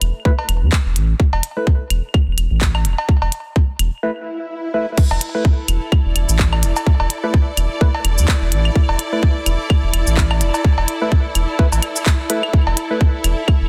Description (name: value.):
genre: minimal techno.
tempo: 127 BPM.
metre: 4/4.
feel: swing 57% on 16ths.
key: unclear.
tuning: A4 = 440 Hz.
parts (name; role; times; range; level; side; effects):
round analog bass; bass; 0.0-13.7 s; E1 to E2; -19 LUFS; equal; sidechain pumping.
minimal click drum kit; drums; 0.0-13.4 s; cabasa, crash cymbal, handclaps, hi-hat; -25 LUFS; equal; none.
claves and cowbell; percussion; 0.0-13.6 s; none; -27 LUFS; equal; delay.
percussive organ stab; stabs; 0.3-13.0 s; A3 to B4; -26 LUFS; equal; lush chorus, delay.
electronic kick drum; drums; 0.3-13.6 s; none; -17 LUFS; equal; none.
swell; sound effects; 4.2-5.0 s; none; -30 LUFS; equal; none.
clear symphonic string section; texture; 5.0-13.7 s; E4 to E5; -27 LUFS; equal; sidechain pumping.
room: digital ambience.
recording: dense, heavily limited modern master.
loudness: -17 LUFS.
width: mono.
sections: 0.0-5.0 A section; 5.0-13.7 B section.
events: break 4.0-5.0; swell 4.2-5.0; drop 5.0-13.7.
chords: 0.0 Esus4.